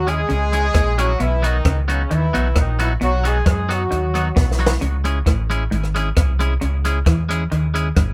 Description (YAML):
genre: ska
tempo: 133 BPM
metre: 4/4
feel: straight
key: C# minor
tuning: A4 = 438 Hz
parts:
  - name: warm horn section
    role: melody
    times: 0.0-4.6 s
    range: C#3 to G#4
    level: -25 LUFS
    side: equal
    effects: none
  - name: fingered electric bass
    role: bass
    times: 0.0-8.1 s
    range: G1 to F#2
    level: -22 LUFS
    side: equal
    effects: none
  - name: clean electric guitar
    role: accompaniment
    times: 0.1-7.9 s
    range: F#3 to G#4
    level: -28 LUFS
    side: equal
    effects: dub echo
  - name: compact cocktail drum kit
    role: drums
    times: 0.1-8.1 s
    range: hi-hat, kick drum, rim click, snare drum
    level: -21 LUFS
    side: equal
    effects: none
  - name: clean electric guitar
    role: riff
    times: 0.3-8.1 s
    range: G2 to F#3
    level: -28 LUFS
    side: equal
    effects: spring reverb
room: light reverb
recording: band playing live in one room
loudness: -19 LUFS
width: mono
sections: 0.0-8.1 A section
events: drum fill 4.4-4.8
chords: 0.0 C#m; 1.2 B; 4.8 C#m